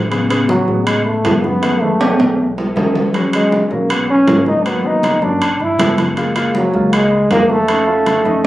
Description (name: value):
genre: Afro-Cuban jazz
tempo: 158 BPM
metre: 4/4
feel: straight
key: unclear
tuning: A4 = 440 Hz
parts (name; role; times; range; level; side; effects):
- upright bass; bass; 0.0-8.5 s; F#1 to A2; -22 LUFS; equal; none
- warm baby grand piano; accompaniment; 0.1-8.5 s; C#3 to E#4; -19 LUFS; left 1 dB; none
- congas; percussion; 0.1-8.5 s; none; -24 LUFS; left 1 dB; none
- timbales; percussion; 0.1-8.5 s; none; -18 LUFS; right 2 dB; none
- clear trombone; melody; 0.5-8.5 s; F#3 to E4; -15 LUFS; equal; none
room: light reverb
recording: recorded on a phone in the room, club reverb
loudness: -12 LUFS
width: side -15 dB against mid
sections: 0.0-8.5 A section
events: drum fill 2.0-3.1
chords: 0.1 Amaj9; 1.6 F#m7; 2.4 B7; 3.1 E69; 4.7 G#m7; 5.4 G13; 6.2 F#maj9; 7.7 Faug7